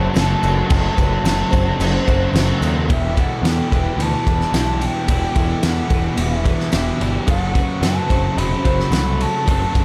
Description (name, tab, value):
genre	rock, shoegaze and dream pop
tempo	109 BPM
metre	4/4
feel	straight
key	E minor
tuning	A4 = 439 Hz
part	mellow hollow jazz flute	melody	0.0-9.8 s	E5 to B5	-28 LUFS	equal	analog delay
part	fingerpicked twelve-string acoustic guitar	arpeggios	0.0-9.8 s	G4 to C5	-32 LUFS	equal	analog chorus, analog delay
part	sludgy distorted guitar	riff	0.0-9.8 s	E2 to F#3	-29 LUFS	equal	overdrive
part	thick fuzz guitar	riff	0.0-9.8 s	E2 to F#3	-26 LUFS	equal	distortion, lush chorus
part	twangy electric guitar	riff	0.0-9.8 s	E2 to F#4	-30 LUFS	equal	reverse reverb
part	growling picked electric bass	bass	0.0-9.8 s	E1 to F#2	-24 LUFS	equal	overdrive
part	loose indie drum kit	drums	0.2-9.8 s	crash cymbal, kick drum, ride cymbal, snare drum	-22 LUFS	equal	none
part	tambourine	percussion	0.2-9.1 s	none	-43 LUFS	equal	none
room	little or no reverb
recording	dark, warm production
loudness	-18 LUFS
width	mono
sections	0.0-2.9 A section; 2.9-9.8 B section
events	none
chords	0.0 F#dim; 2.9 Em7; 7.3 F#dim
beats	0.16 | 0.70 1.25 1.79 2.34 | 2.89 3.44 3.98 4.53 | 5.08 5.63 6.18 6.73 | 7.28 7.83 8.38 8.93 | 9.48